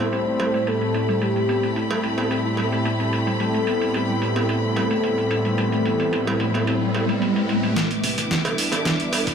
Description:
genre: nu-disco, nu disco.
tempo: 110 BPM.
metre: 4/4.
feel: straight.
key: A minor.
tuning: A4 = 440 Hz.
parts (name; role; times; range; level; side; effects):
soft octave-layered synth lead; melody; 0.0-7.2 s; G4 to C5; -26 LUFS; left 1 dB; chorus, phaser, dub echo.
warm analog pad; accompaniment; 0.0-9.3 s; A2 to E4; -24 LUFS; equal; chorus, sidechain pumping, dub echo.
rich studio violin section; sustained chords; 0.0-9.3 s; A3 to D6; -30 LUFS; left 2 dB; sidechain pumping.
soft round pluck; arpeggios; 0.0-9.3 s; G3 to E4; -30 LUFS; left 1 dB; wide subtle chorus, sidechain pumping, dub echo.
dusty soul sampler-style drum kit; drums; 0.0-9.3 s; hi-hat, snare drum; -28 LUFS; right 2 dB; low-pass filter on hats, low-pass filter on snare, low-pass filter on room, dub echo.
cowbell; percussion; 0.4-9.2 s; none; -31 LUFS; right 4 dB; dub echo.
riser; sound effects; 5.1-7.8 s; none; -27 LUFS; equal; none.
electronic kick drum; drums; 7.8-9.3 s; none; -34 LUFS; equal; high-pass filter on kick, high-pass filter on room.
fingered electric bass; bass; 8.0-9.3 s; G1 to C2; -36 LUFS; equal; none.
room: wet echo chamber reverb, RT60 2.4 s.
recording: echo-heavy mix.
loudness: -19 LUFS.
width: side -7 dB against mid.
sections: 0.0-7.8 A section; 7.8-9.3 B section.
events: riser 5.1-7.8; build-up 7.8-9.3; drum fill 7.8-9.3; filter sweep on analog synth pad 7.8-9.3.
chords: 0.0 Am9; 7.8 Cmaj9.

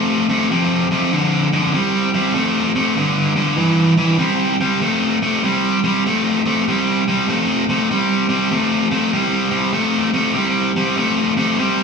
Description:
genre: blues.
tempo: 97 BPM.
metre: 4/4.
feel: swing 65% on 8ths.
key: C major.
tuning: A4 = 439 Hz.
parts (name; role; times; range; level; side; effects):
biting overdriven guitar; solo; 0.0-11.8 s; F2 to A3; -15 LUFS; equal; none.
room: moderate studio reverb, RT60 0.7 s.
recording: band playing live in one room, small room ambience.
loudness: -15 LUFS.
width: side -5 dB against mid.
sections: 0.0-4.2 A section; 4.2-11.8 B section.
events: none.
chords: 0.0 C5; 0.5 F5; 1.7 C5; 3.0 G5; 4.2 C5.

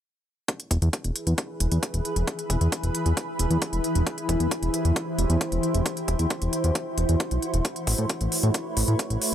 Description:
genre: uplifting trance.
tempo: 134 BPM.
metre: 4/4.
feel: straight.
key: E major.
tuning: A4 = 440 Hz.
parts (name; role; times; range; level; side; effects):
shimmering ambient pad; sustained chords; 1.2-9.3 s; E3 to C#5; -28 LUFS; equal; chorus, built-in reverb, sidechain pumping.
electronic hi-hat; drums; 0.5-9.3 s; none; -30 LUFS; equal; overdrive.
electronic kick drum; drums; 0.5-9.1 s; none; -30 LUFS; equal; overdrive, high-pass filter on kick.
fat analog bass; bass; 0.7-9.2 s; E1 to A2; -23 LUFS; equal; sidechain pumping.
room: digital ambience.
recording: none.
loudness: -23 LUFS.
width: side -10 dB against mid.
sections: 0.5-9.3 A section.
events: filter sweep on analog synth bass 0.5-9.3.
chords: 0.5 E; 4.1 C/E; 7.6 Aadd9.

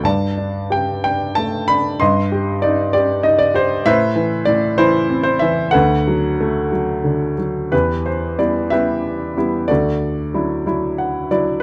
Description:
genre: classical, lyrical solo piano.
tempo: 59-65 BPM (dotted quarters).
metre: 6/8.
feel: rubato.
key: E minor from 7.7 s.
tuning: A4 = 441 Hz.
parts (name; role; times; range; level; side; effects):
warm grand piano; solo; 0.0-11.6 s; D2 to C6; -18 LUFS; equal; none.
room: little or no reverb.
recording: close, detailed microphones.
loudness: -18 LUFS.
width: mono.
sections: 0.0-7.7 A section; 7.7-11.6 B section.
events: grand piano fill 10.7-11.6.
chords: 0.0 Gsus2; 2.0 Cm/G; 3.9 Amadd9; 5.7 D6; 7.7 Em; 9.7 Dadd9.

